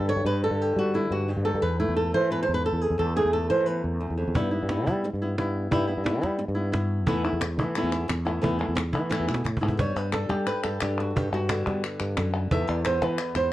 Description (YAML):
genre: flamenco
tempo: 176 BPM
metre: 4/4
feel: straight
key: unclear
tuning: A4 = 444 Hz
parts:
  - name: flamenco guitar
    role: melody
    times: 0.0-13.5 s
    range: E2 to E5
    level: -26 LUFS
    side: equal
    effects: slapback echo
  - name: sustaining fretless electric bass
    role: bass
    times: 0.0-13.5 s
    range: E2 to G3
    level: -28 LUFS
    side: equal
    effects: none
  - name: cajon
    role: percussion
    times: 4.4-13.2 s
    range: none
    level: -30 LUFS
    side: right 1 dB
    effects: none
  - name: palmas hand claps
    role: percussion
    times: 7.2-13.5 s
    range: none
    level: -34 LUFS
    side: left 3 dB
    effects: none
room: light reverb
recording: worn, warbling old tape, cassette tape, warbly pitch drift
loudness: -24 LUFS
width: side -15 dB against mid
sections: 0.0-4.4 A section; 4.4-9.8 B section; 9.8-13.5 C section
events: nylon-string guitar solo 0.0-4.4; drum fill 9.1-9.8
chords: 0.0 G5; 1.6 Esus4; 4.4 G6; 7.1 Esus4; 9.8 G6; 12.5 Esus4